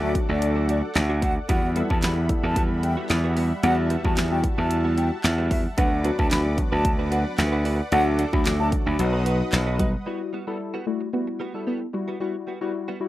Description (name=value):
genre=dance-pop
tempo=112 BPM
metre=4/4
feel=straight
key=E minor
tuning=A4 = 441 Hz
part: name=breathy concert flute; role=melody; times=0.0-9.9 s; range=D5 to B5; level=-28 LUFS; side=equal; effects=none
part: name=warm analog keys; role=accompaniment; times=0.0-13.1 s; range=F#3 to A4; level=-30 LUFS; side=left 3 dB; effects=chorus, sidechain pumping
part: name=soft supersaw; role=sustained chords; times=0.0-10.1 s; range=G3 to D#6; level=-34 LUFS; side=equal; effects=sidechain pumping
part: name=direct-recorded clean electric guitar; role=riff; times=0.0-13.0 s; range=G3 to B4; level=-32 LUFS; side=right 4 dB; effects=analog chorus
part: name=slap bass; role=bass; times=0.0-9.9 s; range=B1 to E2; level=-23 LUFS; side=equal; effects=sidechain pumping
part: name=pop drum kit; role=drums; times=0.1-9.9 s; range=handclaps, hi-hat, kick drum, snare drum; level=-25 LUFS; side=equal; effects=none
part: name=soft round pluck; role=melody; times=9.8-13.1 s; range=G3 to B3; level=-29 LUFS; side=left 1 dB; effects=chorus, ping-pong delay
room=light reverb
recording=rough home demo mix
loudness=-21 LUFS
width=side -15 dB against mid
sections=0.0-10.1 A section; 10.1-13.1 B section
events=drop 0.0-10.1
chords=0.0 D; 1.5 Emadd9; 5.8 Bm/D; 7.9 D; 9.0 B; 10.1 Emadd9